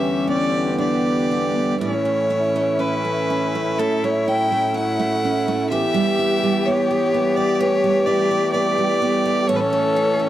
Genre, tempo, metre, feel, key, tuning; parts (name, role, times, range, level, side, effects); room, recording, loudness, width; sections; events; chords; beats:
celtic folk, Celtic slow air; 58-65 BPM; 4/4; rubato; A4 = 440 Hz
rich fiddle; melody; 0.0-10.3 s; A4 to G5; -21 LUFS; equal
warm cello; second line; 0.0-10.3 s; B3 to A4; -24 LUFS; left 5 dB
picked steel-string acoustic guitar; accompaniment; 0.0-10.3 s; E2 to E4; -23 LUFS; right 5 dB
accordion; sustained chords; 0.0-10.3 s; A2 to G4; -27 LUFS; left 1 dB; light tremolo tuning
light reverb; dry, close 1970s-style studio recording; -17 LUFS; side -12 dB against mid
0.0-1.8 A section; 1.8-10.3 B section
0.0 Em7; 1.8 A; 5.7 Em
0.80 | 1.81 2.80 3.79 4.76 | 5.72 6.68 7.62 8.56 | 9.50